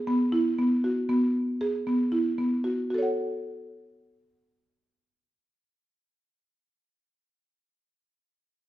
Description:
contemporary instrumental, contemporary; 230 BPM (eighths); 7/8; straight; F# minor; A4 = 440 Hz
buzzing marimba with medium mallets; arpeggios; 0.1-7.6 s; B3 to F#5; -24 LUFS; equal
moderate recital hall reverb, RT60 1.5 s; minimal, uncompressed stereo recording; -24 LUFS; side -15 dB against mid
0.0-2.9 A section; 2.9-6.6 B section
0.0 E5; 2.9 F#m

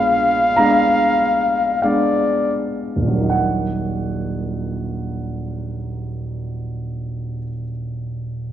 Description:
classical, romantic duo for trumpet and grand piano; 39-56 BPM; 4/4; rubato; Eb minor; A4 = 441 Hz
mellow trumpet; melody; 0.0-2.6 s; D5 to F5; -16 LUFS; left 1 dB
warm grand piano; accompaniment; 0.0-8.5 s; Eb1 to Cb6; -21 LUFS; right 1 dB
wet recital hall reverb, RT60 1.6 s; dark, warm production; -18 LUFS; side -11 dB against mid
0.0-3.3 A section; 3.3-8.5 B section
slowing down 0.0-3.3
0.0 Bb7b9; 3.3 Ebm

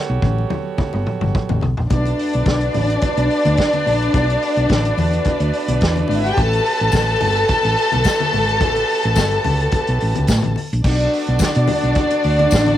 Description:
disco; 107 BPM; 4/4; straight; B minor; A4 = 444 Hz
muted French horn section; sustained chords; 0.0-12.8 s; D3 to C#5; -27 LUFS; right 9 dB; cassette tape, plate reverb
hollow-body short-scale fingered electric bass; bass; 0.1-12.8 s; G1 to B2; -19 LUFS; equal
warm soul drum kit; drums; 0.2-12.8 s; crash cymbal, hi-hat, kick drum, snare drum, toms; -22 LUFS; equal; cassette tape
congas; percussion; 0.2-12.8 s; -28 LUFS; left 7 dB
rich studio violin section; second line; 1.9-12.8 s; D4 to A5; -18 LUFS; left 1 dB; cassette tape, plate reverb
tambourine; percussion; 6.9-12.6 s; -30 LUFS; left 12 dB
light reverb; home recording on cassette; -15 LUFS; side -12 dB against mid
0.0-1.9 A section; 1.9-10.8 B section; 10.8-12.8 C section
drum fill 0.0-1.9
0.0 A13; 1.9 Bm7; 6.4 A13; 10.8 Bm7

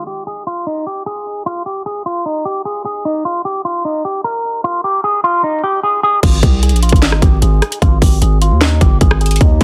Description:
hip hop, trap; 151 BPM; 4/4; half-time; Ab major; A4 = 438 Hz
electric guitar with an envelope filter; melody; 0.0-9.6 s; Eb4 to Bb4; -20 LUFS; equal; low-pass filter, tape echo
distorted 808-style bass; bass; 6.2-9.6 s; G1 to Eb3; -15 LUFS; equal; distortion
trap drum kit; drums; 6.2-9.6 s; crash cymbal, handclaps, hi-hat, kick drum, rim click, snare drum; -14 LUFS; equal
digital ambience; dense, heavily limited modern master, vinyl crackle, low-pass filter; -15 LUFS; mono
0.0-6.2 A section; 6.2-9.6 B section
filter sweep 0.0-6.2; filter sweep on clean electric guitar 6.2-9.6

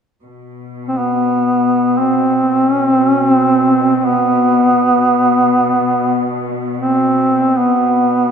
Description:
caucasian folk, Caucasian lament; free time; A4 = 440 Hz
muted chamber cello section; drone; 0.2-8.3 s; B2; -22 LUFS; left 1 dB
mellow duduk; melody; 0.9-8.3 s; B3 to C4; -12 LUFS; equal
wet church reverb, RT60 2.9 s; minimal, uncompressed stereo recording; -11 LUFS; side -7 dB against mid
0.2-8.3 A section

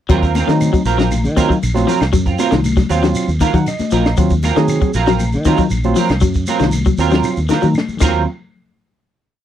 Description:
afrobeat; 117 BPM; 4/4; straight; Eb dorian; A4 = 439 Hz
barky tine electric piano; accompaniment; 0.1-8.3 s; Gb3 to Gb5; -20 LUFS; right 7 dB
electric guitar at the edge of break-up; arpeggios; 0.1-8.2 s; Eb3 to Gb3; -19 LUFS; left 8 dB; analog chorus
semi-hollow electric guitar; stabs; 0.1-8.2 s; Gb3 to Bb4; -20 LUFS; right 7 dB; analog chorus
fingered electric bass; bass; 0.1-8.3 s; Bb1 to Eb3; -18 LUFS; equal
compact cocktail drum kit; drums; 0.1-8.1 s; crash cymbal, hi-hat, kick drum, snare drum, toms; -18 LUFS; equal
congas; percussion; 0.1-8.1 s; -24 LUFS; left 5 dB
shekere; percussion; 0.1-8.1 s; -28 LUFS; right 3 dB
claves; percussion; 0.4-8.1 s; -33 LUFS; left 3 dB
little or no reverb; dry, close 1970s-style studio recording; -13 LUFS; side -11 dB against mid
0.1-8.3 groove; 8.3-9.4 final hit
tine electric piano fill 3.2-4.2; drum fill 7.2-8.3
0.1 Ebm69; 8.3 N.C.

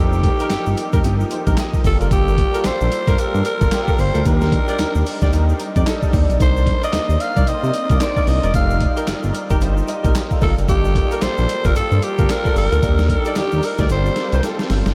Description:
R&B, new jack swing; 112 BPM; 4/4; swing 60% on 16ths; A4 = 439 Hz
raspy alto saxophone; melody; 0.0-14.7 s; G4 to F5; -25 LUFS; equal; tape echo
warm concert grand piano; accompaniment; 0.0-14.9 s; F3 to G5; -28 LUFS; equal; ensemble chorus
smooth synth bass; bass; 0.0-14.9 s; E1 to C3; -20 LUFS; equal
tube shaker; percussion; 0.1-14.9 s; -46 LUFS; equal
boom bap sampler-style drum kit; drums; 0.2-14.9 s; handclaps, hi-hat, kick drum, snare drum, tambourine; -22 LUFS; equal; overdrive
mellow horn section; stabs; 0.4-14.4 s; Eb4 to D5; -31 LUFS; equal
moderate huge ambient reverb, RT60 7.6 s; dreamy mix soaked in reverb; -18 LUFS; mono
0.0-14.9 A section
drum fill 13.9-14.9
0.0 F9sus4; 1.8 Gm9; 4.3 Ebmaj7; 6.4 Cm9; 8.5 F9sus4; 10.4 Gm9; 12.8 Ebmaj7; 13.9 G9sus4

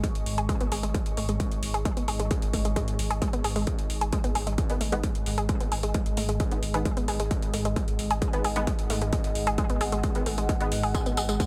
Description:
driving peak-time techno; 132 BPM; 4/4; straight; A4 = 441 Hz
analog pluck; riff; 0.0-11.4 s; G#3 to G#4; -34 LUFS; equal; chorus, sidechain pumping, tape echo
saturated sub bass; bass; 0.0-11.4 s; G#1; -34 LUFS; equal; sidechain pumping, low-pass filter
deep dark ambient pad; drone; 0.0-11.5 s; G#2 to G#3; -39 LUFS; equal; chorus, built-in reverb, sidechain pumping
electronic hi-hat and tambourine; drums; 0.0-11.5 s; -39 LUFS; equal; sidechain pumping on hats, small room ambience, sidechain pumping on perc
electronic kick drum; drums; 0.0-11.5 s; -30 LUFS; equal; distortion, small room ambience
deep dark ambient pad; texture; 0.0-11.5 s; G#4 to C#6; -39 LUFS; equal; chorus, built-in reverb, sidechain pumping
filtered dub chord stab; stabs; 4.7-10.8 s; D#3 to B3; -36 LUFS; equal; ensemble chorus, sidechain pumping, dub echo
light reverb; -27 LUFS; mono
0.0-11.5 A section
fade-in on ambient pad 0.0-11.5
0.0 G#m

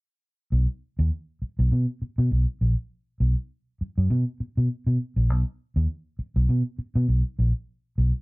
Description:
funk; 101 BPM; 4/4; swing 56% on 16ths; B major; A4 = 443 Hz
vintage muted fingered electric bass; solo; 0.5-8.1 s; A#1 to B2; -21 LUFS; equal
light reverb; dry, close 1970s-style studio recording; -23 LUFS; side -26 dB against mid
0.5-8.2 A section

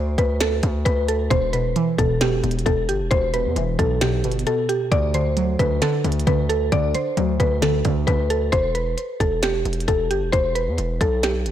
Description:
hip hop, trap; 133 BPM; 4/4; half-time; E minor; A4 = 440 Hz
mallet-like synth pluck; melody; 0.0-11.5 s; G4 to D5; -22 LUFS; equal; chorus, digital delay
distorted 808-style bass; bass; 0.0-11.5 s; E1 to E2; -24 LUFS; equal; distortion
minimal click drum kit; drums; 0.2-11.5 s; hi-hat, kick drum, snare drum; -24 LUFS; equal; soft clipping on snare
warbly dusty pluck; accompaniment; 1.3-8.5 s; B2 to F#3; -24 LUFS; equal; chorus, phaser
light reverb, digital ambience; blown-out, overdriven recording, overdrive; -18 LUFS; side -11 dB against mid
0.0-11.5 A section
0.0 D5; 1.3 Em; 4.9 D; 8.5 Em

